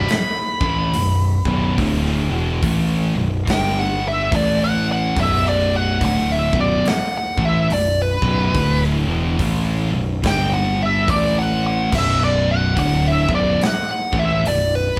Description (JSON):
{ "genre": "stoner and doom metal", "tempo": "71 BPM", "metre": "4/4", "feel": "swing 62% on 8ths", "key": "B minor", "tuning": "A4 = 440 Hz", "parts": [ { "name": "fuzz lead guitar", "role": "melody", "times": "0.0-15.0 s", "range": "B4 to B5", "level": "-23 LUFS", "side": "equal", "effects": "wah, distortion" }, { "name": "thick fuzz guitar", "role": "riff", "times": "0.0-15.0 s", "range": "B1 to A3", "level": "-27 LUFS", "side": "equal", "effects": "none" }, { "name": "thick fuzz guitar", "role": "riff", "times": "0.0-15.0 s", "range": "B1 to A3", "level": "-26 LUFS", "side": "equal", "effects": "distortion" }, { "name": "thick fuzz guitar", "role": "riff", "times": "0.0-15.0 s", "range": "B1 to A3", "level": "-27 LUFS", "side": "equal", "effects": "distortion" }, { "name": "modern bright picked electric bass", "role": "bass", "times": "0.0-15.0 s", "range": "B0 to A1", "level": "-27 LUFS", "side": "equal", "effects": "overdrive" }, { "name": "big rock drum kit", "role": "drums", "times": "0.1-15.0 s", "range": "crash cymbal, hi-hat, kick drum, snare drum", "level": "-28 LUFS", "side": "equal", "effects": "none" } ], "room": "moderate large studio reverb, RT60 1.3 s", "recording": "band playing live in one room", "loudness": "-19 LUFS", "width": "mono", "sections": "0.0-15.0 A section", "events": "lead electric guitar solo 0.0-15.0", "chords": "0.0 Bm; 3.5 G5; 4.3 A5; 5.2 Bm; 10.2 G5; 11.1 A5; 11.9 Bm", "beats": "0.09 0.94 | 1.78 2.63 3.48 4.32 | 5.17 6.01 6.86 7.70 | 8.55 9.39 10.24 11.08 | 11.92 12.77 13.61 14.45" }